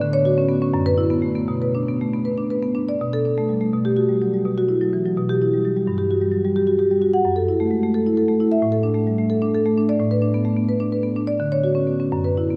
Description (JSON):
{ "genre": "classical, contemporary piece for solo marimba", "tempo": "76-90 BPM (dotted quarters)", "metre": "6/8", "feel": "rubato", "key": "B minor", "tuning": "A4 = 440 Hz", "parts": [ { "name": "marimba with medium mallets", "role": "solo", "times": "0.0-12.6 s", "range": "F#2 to F#5", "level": "-20 LUFS", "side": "equal", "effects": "none" } ], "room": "wet cathedral reverb, RT60 6.1 s", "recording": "nothing above 10.8 kHz", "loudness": "-20 LUFS", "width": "mono", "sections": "0.0-3.0 A section; 3.0-12.6 B section", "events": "none", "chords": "0.0 Dmaj7; 0.7 F#7sus4; 1.5 Bm; 3.0 Bm7; 3.7 Gmaj7/B; 4.5 Bsus4; 5.2 Em/B; 5.9 N.C.; 7.3 F#m7; 8.6 Asus4; 10.0 Bm7/A; 11.4 Dmaj7", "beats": "| 0.02 0.74 | 1.49 2.26 | 3.02 3.75 | 4.47 5.17 | 5.87 6.55 | 7.25 7.94 | 8.61 9.30 | 9.99 10.69 | 11.40 12.12" }